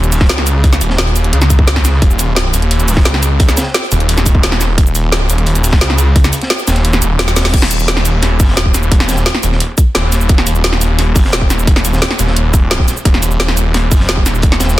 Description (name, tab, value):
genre	dark technical drum and bass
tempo	174 BPM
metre	4/4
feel	straight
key	Eb minor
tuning	A4 = 438 Hz
part	snarling distorted saw bass	bass	0.0-14.8 s	Eb1 to Db2	-13 LUFS	equal	distortion, overdrive
part	drum and bass drum kit	drums	0.0-14.8 s	cabasa, crash cymbal, hi-hat, snare drum	-16 LUFS	equal	soft clipping on snare
part	crunchy breakbeat drum kit	drums	0.1-14.8 s	hi-hat, snare drum	-24 LUFS	equal	high-pass filter on hats, high-pass filter on snare, high-pass filter on room
part	electronic kick drum	drums	0.2-14.5 s	none	-10 LUFS	equal	none
room	little or no reverb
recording	dense, heavily limited modern master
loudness	-10 LUFS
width	side -16 dB against mid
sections	0.0-7.5 A section; 7.5-14.8 A section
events	drop 0.0-7.5, 7.5-14.8; kick drops out 6.8-7.5; drum fill 7.3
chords	none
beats	0.29 | 0.64 0.98 1.33 1.67 | 2.02 2.36 2.71 3.05 | 3.40 3.74 4.09 4.43 | 4.78 5.12 5.47 5.81 | 6.16 6.50 6.85 7.19 | 7.54 7.88 8.23 8.57 | 8.92 9.26 9.61 9.95 | 10.29 10.64 10.98 11.33 | 11.67 12.02 12.36 12.71 | 13.05 13.40 13.74 14.09 | 14.43 14.78